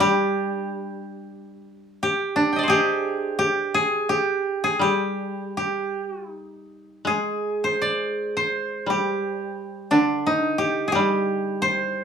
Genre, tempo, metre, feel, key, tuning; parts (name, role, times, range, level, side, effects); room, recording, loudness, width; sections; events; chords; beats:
japanese traditional; 80-90 BPM; 4/4; rubato; A4 = 443 Hz
koto; melody; 0.0-12.0 s; D4 to G5; -22 LUFS; right 1 dB
koto; accompaniment; 0.0-12.0 s; D3 to Ab3; -26 LUFS; left 2 dB
moderate studio reverb, RT60 0.6 s; studio reverb; -21 LUFS; side -7 dB against mid
0.0-12.0 A section
0.01 0.68 | 1.36 2.04 2.73 3.42 | 4.12 4.84 5.57 6.33 | 7.06 7.79 8.51 9.22 | 9.92 10.60 11.28 11.97